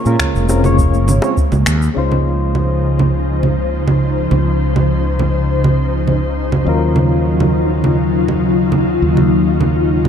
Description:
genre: sunset chillout.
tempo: 102 BPM.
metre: 4/4.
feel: straight.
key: Db major.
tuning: A4 = 435 Hz.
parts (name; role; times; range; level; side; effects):
nylon-string guitar; melody; 0.0-1.3 s; Db5; -32 LUFS; left 3 dB; tape echo, ping-pong delay.
soft electric-piano-like synth keys; accompaniment; 0.0-10.1 s; Gb3 to Db5; -22 LUFS; moving between left 5 dB and right 3 dB; chorus, tremolo, auto-pan, tape echo.
ethereal airy pad; sustained chords; 0.0-10.1 s; Db3 to C5; -17 LUFS; left 2 dB; ensemble chorus, built-in reverb.
mellow fretless electric bass; bass; 0.1-10.1 s; F1 to Bb2; -16 LUFS; equal; none.
electronic shaker, finger snaps and congas; drums; 0.1-10.1 s; none; -19 LUFS; right 4 dB; overdrive.
electronic kick drum; drums; 0.2-1.5 s; none; -17 LUFS; equal; none.
bongos; percussion; 0.5-1.3 s; none; -25 LUFS; left 2 dB; none.
room: wet scoring stage reverb, RT60 1.8 s.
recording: dark, warm production.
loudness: -12 LUFS.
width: side -8 dB against mid.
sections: 0.0-2.0 A section; 2.0-10.1 B section.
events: none.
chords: 0.0 Bbm9; 2.0 Dbmaj9; 6.7 Ebm9.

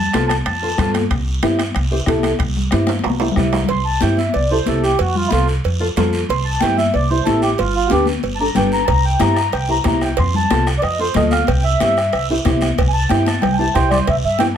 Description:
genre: latin, cumbia.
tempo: 185 BPM.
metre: 4/4.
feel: straight.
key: C major.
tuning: A4 = 440 Hz.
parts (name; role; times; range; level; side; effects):
mellow accordion; melody; 0.0-0.9, 3.7-14.5 s; E4 to C6; -19 LUFS; right 1 dB; none.
upright bass; bass; 0.0-14.6 s; G1 to G2; -20 LUFS; equal; none.
nylon-string guitar; accompaniment; 0.1-14.5 s; D4 to C5; -20 LUFS; equal; none.
bombo; percussion; 0.1-3.7, 8.9-14.6 s; none; -24 LUFS; left 2 dB; none.
congas; percussion; 0.1-14.6 s; none; -23 LUFS; left 4 dB; none.
guiro; percussion; 0.1-14.6 s; none; -30 LUFS; right 3 dB; none.
timbales and cowbell; percussion; 0.1-14.6 s; none; -26 LUFS; right 10 dB; none.
room: moderate studio reverb, RT60 0.8 s.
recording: none.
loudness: -14 LUFS.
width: side -9 dB against mid.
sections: 0.0-3.7 A section; 3.7-14.1 B section.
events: drum fill 2.9-3.7, 13.3-14.1; accordion solo 3.7-14.1.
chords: 0.0 F; 1.1 C; 5.0 F; 6.3 C; 7.6 G; 8.9 C; 10.2 F; 11.5 C.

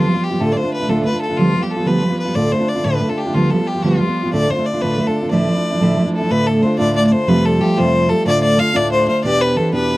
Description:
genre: celtic folk, Celtic jig.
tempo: 122 BPM (dotted quarters).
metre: 6/8.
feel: straight.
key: D dorian.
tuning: A4 = 440 Hz.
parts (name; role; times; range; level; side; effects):
clear fiddle; melody; 0.0-10.0 s; F4 to F5; -19 LUFS; left 2 dB; tape echo.
fingerpicked steel-string acoustic guitar; accompaniment; 0.0-10.0 s; D2 to G4; -16 LUFS; right 1 dB; none.
room: light reverb.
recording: dry, close 1970s-style studio recording.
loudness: -14 LUFS.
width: side -18 dB against mid.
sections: 0.0-6.3 A section; 6.3-10.0 B section.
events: none.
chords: 0.4 Dm; 1.4 G7/D; 2.4 Dm; 3.3 G7/D; 4.3 Dm; 5.3 Dmadd9; 6.3 Dm; 7.3 Fadd9; 8.3 Dm; 9.2 Em7.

